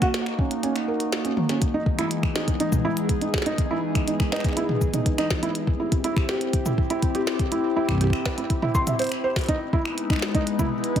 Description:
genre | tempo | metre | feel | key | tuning
IDM | 122 BPM | 4/4 | straight | E lydian | A4 = 439 Hz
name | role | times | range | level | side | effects
warbly tape-like pad | sustained chords | 0.0-11.0 s | E3 to B4 | -27 LUFS | left 1 dB | chorus, built-in reverb, phaser, vintage 12-bit sampler grit
felt-muted upright piano | arpeggios | 0.0-11.0 s | C#4 to C6 | -27 LUFS | right 2 dB | tape echo
electronic kick drum | drums | 0.0-11.0 s | none | -24 LUFS | equal | none
glitchy drum kit | drums | 0.0-11.0 s | cabasa, finger snaps, hi-hat, snare drum, toms | -29 LUFS | equal | tape echo
room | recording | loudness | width
light reverb | none | -21 LUFS | side -9 dB against mid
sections
0.0-1.6 A section; 1.6-11.0 B section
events
kick drops out 0.6-1.6; drum fill 1.2-1.6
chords
0.0 F#; 1.6 Emaj7; 5.6 C; 9.5 Emaj7

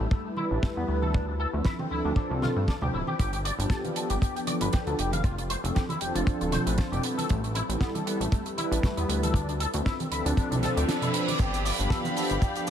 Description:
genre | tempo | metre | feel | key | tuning
nu-disco, nu disco | 117 BPM | 4/4 | swing 54% on 16ths | D dorian | A4 = 439 Hz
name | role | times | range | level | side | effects
electric guitar with an envelope filter | riff | 0.0-12.7 s | E3 to F5 | -33 LUFS | left 4 dB | ensemble chorus, diffuse ambient delay
chorused synth bass | bass | 0.0-12.4 s | D1 to G2 | -29 LUFS | equal | none
kick drum | drums | 0.1-12.5 s | none | -26 LUFS | equal | none
warm analog pad | accompaniment | 0.2-12.7 s | F3 to C5 | -31 LUFS | equal | chorus, tremolo, diffuse ambient delay
congas | percussion | 0.4-12.7 s | none | -36 LUFS | right 3 dB | none
damped 70s drum kit | drums | 0.6-12.7 s | cabasa, crash cymbal, hi-hat, snare drum | -35 LUFS | right 3 dB | none
reverse cymbal | sound effects | 10.6-11.4 s | none | -37 LUFS | right 4 dB | none
dark studio violin section | sustained chords | 11.4-12.7 s | G4 to B5 | -33 LUFS | left 1 dB | sidechain pumping
room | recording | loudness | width
light reverb, small room reverb | none | -25 LUFS | side -9 dB against mid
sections
0.0-12.7 A section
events
filter sweep on analog synth pad 0.0-12.7; reverse cymbal 10.6-11.4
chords
0.0 A7(no3); 1.1 Dm7; 3.2 G7; 5.0 F6; 7.0 A7(no3); 9.3 Dm7; 11.4 G7

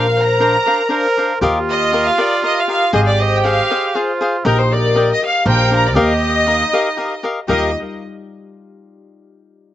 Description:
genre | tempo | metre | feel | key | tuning
mexican folk, mariachi | 119 BPM | 3/4 | straight | Eb major | A4 = 440 Hz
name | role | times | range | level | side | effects
clear chamber violin section | melody | 0.0-7.7 s | Bb4 to Bb5 | -18 LUFS | right 1 dB | slapback echo
warm trumpet | second line | 0.0-7.7 s | Eb4 to Bb4 | -21 LUFS | right 4 dB | none
cavaquinho | accompaniment | 0.0-7.7 s | D4 to G5 | -20 LUFS | left 3 dB | slapback echo
concert harp | arpeggios | 0.0-7.7 s | G3 to F5 | -21 LUFS | left 4 dB | none
upright bass | bass | 0.0-7.7 s | Ab1 to Eb2 | -18 LUFS | right 1 dB | none
room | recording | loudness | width
little or no reverb | recorded outdoors, with no room sound, nothing above 7.9 kHz | -13 LUFS | side -12 dB against mid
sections
0.0-7.5 A section; 7.5-9.0 B section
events
none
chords
0.0 Bbadd9; 1.4 Ebadd9; 2.9 Ab6; 4.5 Eb/Bb; 5.5 Bbadd9; 6.0 Ebadd9

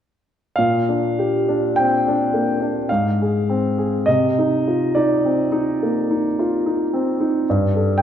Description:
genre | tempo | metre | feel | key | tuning
classical, impressionist solo piano | 50-55 BPM | 3/4 | rubato | Bb mixolydian | A4 = 439 Hz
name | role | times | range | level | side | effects
warm grand piano | solo | 0.6-8.0 s | G2 to G5 | -17 LUFS | equal | none
room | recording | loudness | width
wet scoring stage reverb, RT60 1.6 s | dark, warm production | -17 LUFS | side -9 dB against mid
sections
0.6-8.0 A section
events
none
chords
0.6 Bb69; 2.9 Ab; 4.1 Cm11; 7.5 Gsus2

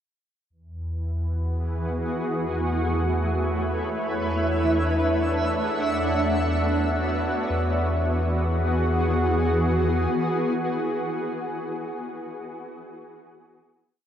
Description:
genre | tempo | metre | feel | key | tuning
ambient | 69 BPM | 4/4 | straight | E mixolydian | A4 = 439 Hz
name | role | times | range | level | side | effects
shimmering ambient pad | sustained chords | 1.4-11.8 s | E3 to F#5 | -25 LUFS | equal | chorus, built-in reverb
warm sub bass | bass | 0.5-10.1 s | E2 | -26 LUFS | equal | none
twinkling granular texture | texture | 4.4-7.5 s | E5 | -31 LUFS | equal | built-in reverb
direct-recorded clean electric guitar | arpeggios | 4.7-12.4 s | E3 to B4 | -39 LUFS | left 1 dB | none
room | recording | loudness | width
wet huge ambient reverb, RT60 8.2 s | worn, warbling old tape, cassette tape, warbly pitch drift | -22 LUFS | side -9 dB against mid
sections
0.5-7.5 A section; 7.5-11.0 final chord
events
none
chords
0.5 Eadd9; 2.3 Amaj9/E; 4.0 D69/E; 7.5 E9

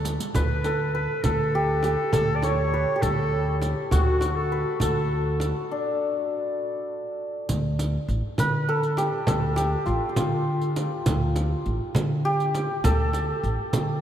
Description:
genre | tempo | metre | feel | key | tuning
Persian modal ensemble | 67 BPM (dotted quarters) | 6/8 | straight | D dastgah mahur, D avaz esfahan from 7.5 s | A4 = 441 Hz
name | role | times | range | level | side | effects
santur | melody | 0.0-14.0 s | D4 to C#5 | -27 LUFS | equal | none
upright bass | bass | 0.0-14.0 s | A1 to D3 | -26 LUFS | equal | none
frame drum | percussion | 0.0-13.9 s | none | -30 LUFS | right 2 dB | none
riq | percussion | 0.1-13.9 s | none | -39 LUFS | right 4 dB | none
clear clarinet | second line | 0.4-5.7 s | F#4 to D5 | -29 LUFS | equal | none
room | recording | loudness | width
wet cathedral reverb, RT60 5.2 s | in a vast, echoing space | -22 LUFS | side -10 dB against mid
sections
0.0-7.5 A section; 7.5-14.0 B section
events
drum fill 0.0-0.4; stop 5.7-7.5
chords
none

